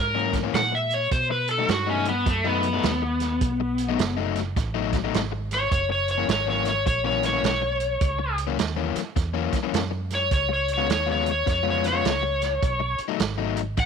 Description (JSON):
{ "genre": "electric blues shuffle", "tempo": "104 BPM", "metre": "4/4", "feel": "swing 63% on 8ths", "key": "unclear", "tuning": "A4 = 439 Hz", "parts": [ { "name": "overdriven slide guitar", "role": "melody", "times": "0.0-13.9 s", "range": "A3 to F#5", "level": "-24 LUFS", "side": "left 1 dB", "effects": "none" }, { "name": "vintage muted fingered electric bass", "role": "bass", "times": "0.0-13.9 s", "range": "F#1 to B2", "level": "-29 LUFS", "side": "right 1 dB", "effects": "none" }, { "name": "overdriven electric guitar", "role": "riff", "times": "0.1-13.8 s", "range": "F#2 to E#4", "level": "-28 LUFS", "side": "left 16 dB", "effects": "none" }, { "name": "vintage drum kit", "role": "drums", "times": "0.3-13.9 s", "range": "hi-hat, kick drum, snare drum", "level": "-28 LUFS", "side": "right 5 dB", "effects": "none" } ], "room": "little or no reverb", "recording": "1960s-style stereo", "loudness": "-22 LUFS", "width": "side -6 dB against mid", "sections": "0.0-13.9 A section", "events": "electric slide guitar solo 0.0-13.9", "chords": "0.0 F#7; 1.1 B7; 5.7 F#7; 10.3 C#7; 12.6 B7" }